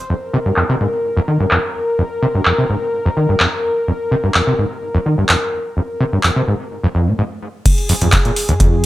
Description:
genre	acid house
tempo	127 BPM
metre	4/4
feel	straight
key	F minor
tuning	A4 = 438 Hz
part	warm analog pad	sustained chords	0.0-8.9 s	Ab4 to C5	-21 LUFS	left 1 dB	chorus, sidechain pumping
part	overdriven acid bass	riff	0.1-8.9 s	Eb2 to Eb3	-17 LUFS	equal	distortion, lush chorus, sidechain pumping
part	booming analog drum machine	drums	0.6-8.9 s	crash cymbal, handclaps, hi-hat, toms	-17 LUFS	equal	low-pass filter on hats, low-pass filter on toms, low-pass filter on snare, low-pass filter on cymbals, low-pass filter on room
part	electronic kick drum	drums	7.7-8.7 s	none	-14 LUFS	equal	none
room	light reverb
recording	none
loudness	-14 LUFS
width	side -16 dB against mid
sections	0.1-7.7 A section; 7.7-8.9 B section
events	filter sweep on drum 0.1-7.7; drop 7.7-8.9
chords	0.1 N.C.; 7.7 Fm

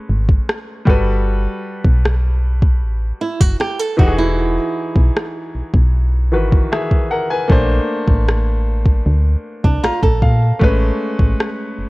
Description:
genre	contemporary R&B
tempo	77 BPM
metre	4/4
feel	straight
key	unclear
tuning	A4 = 440 Hz
part	clear concert grand piano	accompaniment	0.0-11.9 s	D#3 to Bb5	-21 LUFS	left 1 dB	none
part	solid FM bass	bass	0.1-11.9 s	E1 to Bb2	-16 LUFS	equal	none
part	smooth R&B drum kit	drums	0.3-11.6 s	kick drum, rim click	-15 LUFS	equal	none
part	flamenco guitar	arpeggios	3.2-10.6 s	D4 to A4	-22 LUFS	right 4 dB	tape echo
room	small room ambience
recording	worn, warbling old tape, cassette tape, warbly pitch drift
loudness	-14 LUFS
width	side -21 dB against mid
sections	0.0-11.9 A section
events	grand piano fill 9.4-10.6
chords	0.0 Amaj9; 0.9 Gmaj9; 4.0 Emaj9; 7.5 Bbmaj9; 10.6 Amaj9

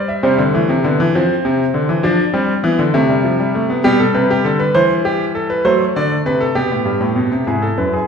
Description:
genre	classical, baroque-style 3-part fugue for grand piano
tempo	66 BPM (dotted quarters)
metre	6/8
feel	straight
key	C major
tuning	A4 = 444 Hz
part	bright grand piano	solo	0.0-8.1 s	F#2 to E5	-13 LUFS	equal	none
room	wet recital hall reverb, RT60 1.4 s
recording	heard from further back in the room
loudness	-13 LUFS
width	side -6 dB against mid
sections	0.0-7.5 A section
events	none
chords	0.2 C; 1.1 F5; 2.0 G7/F; 2.9 C; 3.8 G/B; 4.7 C/E; 5.6 D7; 6.6 G; 7.5 E

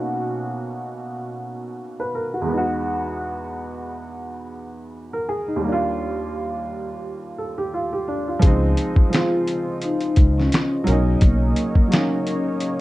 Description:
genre	lo-fi hip hop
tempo	86 BPM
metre	4/4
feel	swing 55% on 16ths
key	Db major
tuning	A4 = 436 Hz
part	warm upright piano	accompaniment	0.0-12.8 s	Eb2 to Cb5	-24 LUFS	right 1 dB	cassette tape, low-pass filter, plate reverb
part	dark analog pad	sustained chords	8.4-12.8 s	Db3 to Eb5	-30 LUFS	left 2 dB	chorus, low-pass filter
part	upright bass	bass	8.4-11.5 s	Cb2 to Db2	-20 LUFS	equal	none
part	lo-fi sampler-style drum kit	drums	8.4-12.8 s	finger snaps, hi-hat, kick drum, snare drum	-17 LUFS	equal	overdrive
part	vibraphone with soft mallets	melody	9.1-12.8 s	Bb3 to F4	-24 LUFS	left 1 dB	low-pass filter
room	moderate studio ambience, RT60 0.5 s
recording	dark, warm production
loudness	-19 LUFS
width	side -17 dB against mid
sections	0.0-8.4 A section; 8.4-12.8 B section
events	filter sweep on upright piano 0.0-8.4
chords	0.0 Cbmaj9; 2.5 Emaj9; 5.6 Ebmaj9; 8.4 Dbmaj9; 10.9 Cbmaj9

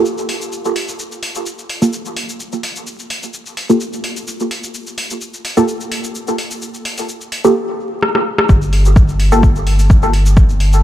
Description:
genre	dub techno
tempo	128 BPM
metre	4/4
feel	swing 54% on 16ths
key	G minor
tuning	A4 = 441 Hz
part	filtered dub chord stab	stabs	0.0-9.4 s	Bb3 to A4	-18 LUFS	right 1 dB	chorus, phaser, cassette tape, sidechain pumping, dub echo
part	deep house drum kit	drums	0.1-10.8 s	hi-hat, rim click, shaker	-21 LUFS	left 1 dB	overdrive
part	soft dub sub bass	bass	8.5-10.8 s	G1	-12 LUFS	equal	sidechain pumping
part	electronic kick drum	drums	8.5-10.5 s	none	-11 LUFS	equal	overdrive
room	light reverb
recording	vinyl crackle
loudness	-14 LUFS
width	side -13 dB against mid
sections	0.0-8.5 A section; 8.5-10.8 B section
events	filter sweep on synth stab 0.0-8.5; drum fill 8.0-8.5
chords	0.0 Gm9; 8.5 N.C.

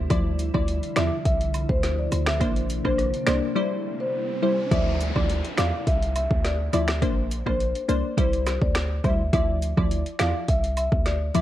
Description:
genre	dancehall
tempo	104 BPM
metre	4/4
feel	straight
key	D minor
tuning	A4 = 440 Hz
part	glassy FM pad	sustained chords	0.0-4.7 s	C3 to E4	-33 LUFS	left 1 dB	ensemble chorus, built-in reverb, sidechain pumping
part	hard-hitting 808-style bass	bass	0.0-11.4 s	Bb1 to E2	-26 LUFS	equal	none
part	wavetable chord stab	accompaniment	0.1-11.4 s	F3 to D5	-27 LUFS	left 1 dB	sidechain pumping
part	afro-pop drum kit	drums	0.1-11.4 s	finger snaps, hi-hat, kick drum, rim click, snare drum	-26 LUFS	equal	overdrive
part	woodblock and cabasa	percussion	0.1-11.4 s	none	-38 LUFS	right 5 dB	none
part	marimba with medium mallets	melody	0.5-11.4 s	C5 to F5	-29 LUFS	left 1 dB	digital delay
part	riser and downlifter	sound effects	3.5-9.3 s	none	-37 LUFS	right 1 dB	none
room	little or no reverb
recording	worn, warbling old tape, cassette tape, warbly pitch drift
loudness	-21 LUFS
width	side -13 dB against mid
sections	0.0-4.7 A section; 4.7-11.4 B section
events	riser 3.5-4.7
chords	0.1 Dmadd9; 2.4 Bbadd9; 3.6 C; 4.7 Dmadd9; 7.0 Bbadd9; 8.2 C; 9.3 Dmadd9

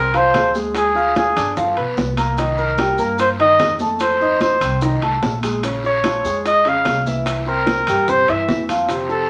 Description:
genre	Afro-Cuban jazz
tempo	147 BPM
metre	4/4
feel	straight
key	unclear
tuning	A4 = 440 Hz
part	breathy trumpet	melody	0.0-9.3 s	Ab4 to F5	-19 LUFS	equal	none
part	warm grand piano	accompaniment	0.0-9.2 s	C3 to F6	-23 LUFS	equal	none
part	upright bass	bass	0.0-9.3 s	G1 to G2	-28 LUFS	equal	none
part	bongos	percussion	0.1-9.3 s	none	-29 LUFS	equal	none
part	congas	percussion	0.1-9.3 s	none	-32 LUFS	equal	none
part	maracas	percussion	0.1-9.3 s	none	-42 LUFS	equal	none
part	timbales	percussion	0.1-9.1 s	none	-32 LUFS	equal	none
part	guiro	percussion	0.3-9.3 s	none	-37 LUFS	equal	none
room	wet studio reverb, RT60 0.8 s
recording	none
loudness	-18 LUFS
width	mono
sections	0.0-9.3 A section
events	none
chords	0.0 Fm; 0.8 Ddim; 1.6 G7; 2.4 Cm7; 4.0 F7; 5.6 Bbm7; 7.3 C7

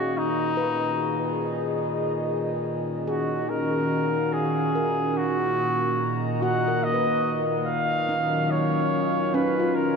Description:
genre	ambient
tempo	72 BPM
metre	3/4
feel	straight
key	Eb minor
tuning	A4 = 441 Hz
part	warm flugelhorn	melody	0.0-10.0 s	Eb4 to F#5	-26 LUFS	equal	tape echo
part	warbly tape-like pad	sustained chords	0.0-10.0 s	A#2 to A#5	-27 LUFS	equal	chorus, built-in reverb
part	handpan	arpeggios	0.0-10.0 s	Db4 to Eb5	-32 LUFS	equal	tape echo
part	pedal harmonium	drone	0.0-10.0 s	Bb2 to Eb3	-32 LUFS	left 2 dB	none
room	wet cathedral reverb, RT60 6.8 s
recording	none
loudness	-22 LUFS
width	side -5 dB against mid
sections	0.0-10.0 A section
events	none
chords	0.2 Abmadd9/Bb; 2.7 Ebm9; 5.2 Bmaj7; 7.7 Ebm9

